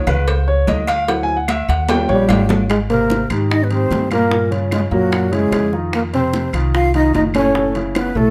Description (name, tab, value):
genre	Afro-Cuban jazz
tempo	148 BPM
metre	4/4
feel	straight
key	Ab major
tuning	A4 = 440 Hz
part	warm grand piano	accompaniment	0.0-8.3 s	A2 to Ab5	-23 LUFS	equal	none
part	upright bass	bass	0.1-8.3 s	Gb1 to Ab2	-22 LUFS	equal	none
part	agogo bells and timbales	percussion	0.1-8.2 s	none	-28 LUFS	equal	none
part	claves	percussion	0.1-8.2 s	none	-34 LUFS	equal	none
part	congas	percussion	0.1-8.3 s	none	-29 LUFS	equal	none
part	cowbell and bongos	percussion	0.3-8.3 s	none	-28 LUFS	equal	none
part	breathy trombone	melody	2.1-8.3 s	Gb3 to F4	-20 LUFS	equal	slapback echo
part	breathy mellow silver concert flute	second line	2.1-8.3 s	Gb4 to F5	-27 LUFS	equal	none
room	light reverb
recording	close, detailed microphones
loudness	-17 LUFS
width	mono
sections	0.0-2.7 A section; 2.7-8.3 B section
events	grand piano solo 0.0-2.7; drum fill 1.9-2.7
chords	0.0 Db; 1.1 D9; 1.9 Eb7; 2.7 Abmaj9; 4.3 Gm7b5; 5.1 Gb13; 5.9 F5; 7.5 Gbm7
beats	0.27 0.68 | 1.08 1.48 1.89 2.29 | 2.69 3.10 3.50 3.91 | 4.31 4.71 5.12 5.52 | 5.93 6.33 6.74 7.14 | 7.55 7.95